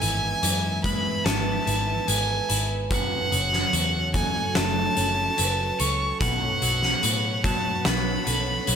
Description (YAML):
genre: post-rock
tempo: 73 BPM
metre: 4/4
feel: straight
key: unclear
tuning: A4 = 439 Hz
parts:
  - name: clear violin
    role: melody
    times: 0.0-8.8 s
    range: F#5 to C#6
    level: -26 LUFS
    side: right 1 dB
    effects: analog delay
  - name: bright chamber string section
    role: sustained chords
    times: 0.0-8.8 s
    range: F#3 to F#5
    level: -37 LUFS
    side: equal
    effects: none
  - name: semi-hollow electric guitar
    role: arpeggios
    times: 0.0-8.8 s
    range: F#2 to E4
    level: -32 LUFS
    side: left 3 dB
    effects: phaser, analog delay
  - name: picked electric bass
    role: bass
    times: 0.0-8.8 s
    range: F#1 to A2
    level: -28 LUFS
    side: equal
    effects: none
  - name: oversized low-tuned drum kit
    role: drums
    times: 0.0-8.8 s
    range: hi-hat, kick drum, snare drum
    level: -26 LUFS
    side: equal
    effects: none
  - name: vibraphone with medium hard mallets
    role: arpeggios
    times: 0.8-8.8 s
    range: F#4 to C#5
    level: -35 LUFS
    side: right 8 dB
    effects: analog delay
room: light reverb, small room reverb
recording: none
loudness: -21 LUFS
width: side -7 dB against mid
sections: 0.0-8.8 A section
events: none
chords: 0.0 E/G#; 2.9 F#m; 6.2 Bsus2